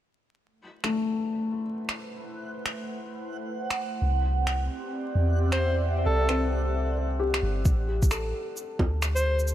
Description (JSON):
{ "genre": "future garage", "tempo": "132 BPM", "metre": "4/4", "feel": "swing 62% on 16ths", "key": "A dorian", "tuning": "A4 = 443 Hz", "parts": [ { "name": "airy breathy pad", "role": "sustained chords", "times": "1.3-7.7 s", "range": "A3 to E5", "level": "-35 LUFS", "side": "right 2 dB", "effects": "chorus, phaser, sidechain pumping" }, { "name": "backwards swelling texture", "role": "texture", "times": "2.4-7.7 s", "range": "F#5", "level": "-37 LUFS", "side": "right 6 dB", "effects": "built-in reverb" }, { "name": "felt-muted upright piano", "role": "accompaniment", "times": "0.8-9.5 s", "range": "A3 to A4", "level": "-32 LUFS", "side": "left 3 dB", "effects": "sidechain pumping, tape echo" }, { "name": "electronic finger snaps, shaker and bongos", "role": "drums", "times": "0.8-9.5 s", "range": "none", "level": "-32 LUFS", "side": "right 1 dB", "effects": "none" }, { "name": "soft 808-style bass", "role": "bass", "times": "4.0-9.5 s", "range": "G1 to E2", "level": "-26 LUFS", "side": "equal", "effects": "tube saturation" }, { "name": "clear alto saxophone", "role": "melody", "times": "5.5-9.4 s", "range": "A4 to C5", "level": "-29 LUFS", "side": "left 1 dB", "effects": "tape echo" }, { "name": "electronic kick drum", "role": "drums", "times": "7.7-8.9 s", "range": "none", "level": "-22 LUFS", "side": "equal", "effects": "none" } ], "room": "light reverb", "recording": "vinyl crackle", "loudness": "-25 LUFS", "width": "side -12 dB against mid", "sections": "0.4-7.7 A section; 7.7-9.5 B section", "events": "fade-in on analog synth pad 0.4-7.7", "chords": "0.4 Am; 4.0 Cmaj7; 7.7 Asus4" }